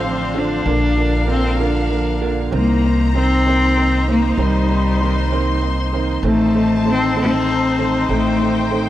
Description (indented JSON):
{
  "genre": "six-eight pop ballad",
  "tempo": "65 BPM (dotted quarters)",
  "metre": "6/8",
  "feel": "straight",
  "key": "unclear",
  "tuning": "A4 = 441 Hz",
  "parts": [
    { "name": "warm cello", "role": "melody", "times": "0.0-8.8 s", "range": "G3 to D4", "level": "-18 LUFS", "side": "left 2 dB", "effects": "cassette tape, analog delay" },
    { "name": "warm baby grand piano", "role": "accompaniment", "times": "0.0-8.9 s", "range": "D3 to C4", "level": "-23 LUFS", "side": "right 7 dB", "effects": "cassette tape" },
    { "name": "rich studio string section", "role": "sustained chords", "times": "0.0-8.9 s", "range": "D4 to C6", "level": "-24 LUFS", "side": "left 2 dB", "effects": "cassette tape" },
    { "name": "direct-recorded clean electric guitar", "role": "arpeggios", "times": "0.0-3.1 s", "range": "F3 to D4", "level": "-30 LUFS", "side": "right 6 dB", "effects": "cassette tape" },
    { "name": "upright bass", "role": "bass", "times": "0.0-8.9 s", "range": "A1 to C2", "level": "-20 LUFS", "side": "equal", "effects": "none" }
  ],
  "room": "moderate studio reverb, RT60 0.6 s",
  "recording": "home recording on cassette",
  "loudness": "-15 LUFS",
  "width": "side -13 dB against mid",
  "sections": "0.0-2.5 A section; 2.5-8.9 B section",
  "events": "none",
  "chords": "0.0 Dm7/A; 0.7 Bb; 2.5 Cm7; 6.2 Adim"
}